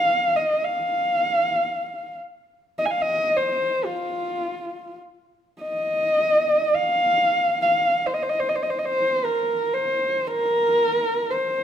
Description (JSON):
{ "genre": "mongolian traditional, Mongolian folk", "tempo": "free time", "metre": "none", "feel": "none", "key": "unclear", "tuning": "A4 = 442 Hz", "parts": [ { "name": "dark horsehead fiddle", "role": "solo", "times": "0.0-11.6 s", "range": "F4 to Ab5", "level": "-20 LUFS", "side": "equal", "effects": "none" } ], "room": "moderate recital hall reverb, RT60 1.5 s", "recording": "close, detailed microphones", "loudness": "-20 LUFS", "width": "side -9 dB against mid", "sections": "0.0-5.2 A section; 5.2-11.6 A section", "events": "none", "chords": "none" }